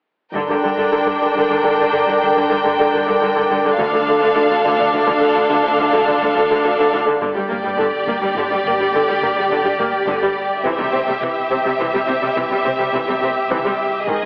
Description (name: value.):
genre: cinematic, epic orchestral film score.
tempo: 70 BPM (dotted quarters).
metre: 12/8.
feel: straight.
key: G minor.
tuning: A4 = 440 Hz.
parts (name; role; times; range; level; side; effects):
warm symphonic violin section; second line; 0.3-14.3 s; G4 to G5; -22 LUFS; equal; none.
dark symphonic double bass section; bass; 0.3-14.1 s; G1 to D2; -38 LUFS; equal; none.
rich symphonic cello section; bass; 0.3-14.3 s; D2 to C3; -29 LUFS; equal; none.
rich symphonic viola section; accompaniment; 0.4-14.3 s; D3 to D4; -20 LUFS; equal; none.
warm symphonic violin section; melody; 7.2-14.3 s; D5 to E5; -25 LUFS; equal; none.
taiko ensemble; drums; 7.2-8.3, 14.1-14.3 s; none; -44 LUFS; equal; none.
room: wet scoring stage reverb, RT60 1.6 s.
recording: heavily compressed radio sound, telephone sound.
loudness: -17 LUFS.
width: mono.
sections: 0.3-7.2 A section; 7.2-14.3 B section.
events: build-up 7.2-14.3.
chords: 0.3 Gm; 3.8 Dm; 7.2 G5; 10.7 C.